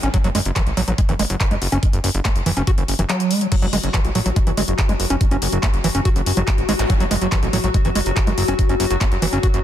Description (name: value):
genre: psychedelic trance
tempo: 142 BPM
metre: 4/4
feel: straight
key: F# minor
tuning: A4 = 440 Hz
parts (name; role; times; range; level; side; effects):
- overdriven acid bass; riff; 0.0-9.5 s; E3 to F#4; -23 LUFS; right 1 dB; distortion, auto-pan, sidechain pumping, digital delay
- fat analog bass; bass; 0.0-9.6 s; F#1 to A1; -22 LUFS; equal; none
- drum and bass drum kit; drums; 0.0-9.6 s; crash cymbal, handclaps, hi-hat; -26 LUFS; left 1 dB; none
- electronic kick drum; drums; 0.1-9.5 s; none; -18 LUFS; equal; none
- pulsing gated texture; sustained chords; 3.5-9.6 s; F#3 to F#4; -24 LUFS; left 3 dB; chorus, built-in reverb, sidechain pumping
- zap; sound effects; 6.8-6.9 s; none; -31 LUFS; equal; none
room: little or no reverb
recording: dense, heavily limited modern master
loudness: -16 LUFS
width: side -11 dB against mid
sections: 0.0-9.6 A section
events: none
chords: 0.0 F#5